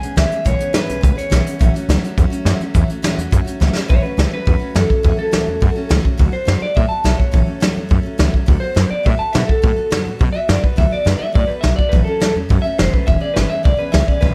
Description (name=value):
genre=rockabilly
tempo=209 BPM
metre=4/4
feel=straight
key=A major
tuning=A4 = 440 Hz
part: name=electric guitar through a small old amp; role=melody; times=0.0-14.3 s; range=A4 to A5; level=-24 LUFS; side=equal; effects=tape echo
part: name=picked steel-string acoustic guitar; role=accompaniment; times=0.0-14.3 s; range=A2 to A4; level=-26 LUFS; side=equal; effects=none
part: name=upright bass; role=bass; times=0.0-14.3 s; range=E1 to B2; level=-20 LUFS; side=equal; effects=none
part: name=soft brush drum kit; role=drums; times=0.0-14.3 s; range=hi-hat, kick drum, snare drum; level=-20 LUFS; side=equal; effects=none
room=little or no reverb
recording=none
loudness=-16 LUFS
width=mono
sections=0.0-3.9 A section; 3.9-14.3 B section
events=drum fill 3.6; clean electric guitar solo 3.9-14.3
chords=0.0 E6; 1.6 A6; 6.2 D6; 7.3 A6; 8.5 D6; 11.9 A6; 13.1 E6